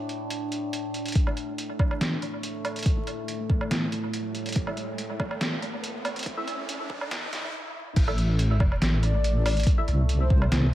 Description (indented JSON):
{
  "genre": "deep dubstep",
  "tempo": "141 BPM",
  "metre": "4/4",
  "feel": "half-time",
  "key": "A minor",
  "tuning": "A4 = 441 Hz",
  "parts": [
    { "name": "overtone-sweeping drone", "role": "sustained chords", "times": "0.0-10.7 s", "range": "A2 to D4", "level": "-34 LUFS", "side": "equal", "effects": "chorus, built-in reverb" },
    { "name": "trip hop sampler-style drum kit", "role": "drums", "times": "0.1-10.6 s", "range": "crash cymbal, hi-hat, snare drum, woodblock", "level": "-30 LUFS", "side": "equal", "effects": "overdrive, tape echo" },
    { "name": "electronic kick drum", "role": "drums", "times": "1.2-10.4 s", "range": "none", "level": "-23 LUFS", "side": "equal", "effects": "none" },
    { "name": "riser", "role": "sound effects", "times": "2.8-7.5 s", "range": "none", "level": "-39 LUFS", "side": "equal", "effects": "none" },
    { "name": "filtered dub chord stab", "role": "stabs", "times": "1.3-9.9 s", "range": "A3 to E5", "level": "-38 LUFS", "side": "right 1 dB", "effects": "phaser, wide subtle chorus, tape echo" },
    { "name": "deep soft wobble bass", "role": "bass", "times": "8.0-10.7 s", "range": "A1 to C2", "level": "-23 LUFS", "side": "equal", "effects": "chorus" },
    { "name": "breathy flute-like synth lead", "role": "melody", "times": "9.0-10.5 s", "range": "C5 to D5", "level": "-33 LUFS", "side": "left 4 dB", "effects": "analog chorus, dub echo" }
  ],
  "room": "light reverb, digital ambience",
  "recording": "echo-heavy mix, vinyl crackle, high-pass filter",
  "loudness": "-24 LUFS",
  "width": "side -14 dB against mid",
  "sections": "0.0-1.2 A section; 1.2-8.0 B section; 8.0-10.7 C section",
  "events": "build-up 1.2-8.0; filter sweep on synth stab 1.2-8.0; filter sweep 1.2-8.0; riser 2.8-7.5; break 7.5-8.0; drop 8.0-10.7",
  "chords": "0.0 A5"
}